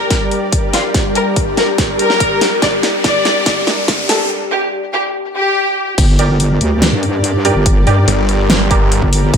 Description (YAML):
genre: heavy wobble dubstep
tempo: 143 BPM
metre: 4/4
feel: half-time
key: G minor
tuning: A4 = 440 Hz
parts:
  - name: rich symphonic violin section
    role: melody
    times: 0.0-5.9 s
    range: F4 to D5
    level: -17 LUFS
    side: left 1 dB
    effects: ping-pong delay
  - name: supersaw pad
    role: sustained chords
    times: 0.0-9.4 s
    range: G3 to D5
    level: -20 LUFS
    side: equal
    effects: sidechain pumping
  - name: riser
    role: sound effects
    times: 0.4-4.3 s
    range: none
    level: -23 LUFS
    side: equal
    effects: none
  - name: deep dark ambient pad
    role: texture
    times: 0.4-4.3, 9.0-9.4 s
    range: G4 to Bb5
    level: -22 LUFS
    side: left 2 dB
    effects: chorus, built-in reverb, sidechain pumping
  - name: big-room dance drum kit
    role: drums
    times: 0.1-9.4 s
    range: crash cymbal, hi-hat, snare drum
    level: -17 LUFS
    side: equal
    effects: high-pass filter on hats, high-pass filter on snare, high-pass filter on cymbals
  - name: electronic kick drum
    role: drums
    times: 0.1-9.4 s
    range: none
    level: -16 LUFS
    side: equal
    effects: none
  - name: wobble bass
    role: bass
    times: 6.0-9.4 s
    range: G1 to G2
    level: -14 LUFS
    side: equal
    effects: chorus, overdrive
  - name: orchestra-hit-like synth stab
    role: stabs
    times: 6.2-8.9 s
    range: G4 to D5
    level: -19 LUFS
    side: right 4 dB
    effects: built-in reverb, cassette tape, ping-pong delay
  - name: snarling distorted saw bass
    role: bass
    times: 8.1-9.0 s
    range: G1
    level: -14 LUFS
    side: equal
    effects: distortion, overdrive
room: moderate digital room reverb, RT60 1.2 s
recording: high-pass filter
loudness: -11 LUFS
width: side -7 dB against mid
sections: 0.0-6.0 A section; 6.0-9.4 B section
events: build-up 0.0-6.0; drum fill 0.0-4.3; riser 0.4-4.3; break 4.3-6.0; drop 6.0-9.4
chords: 0.0 Gm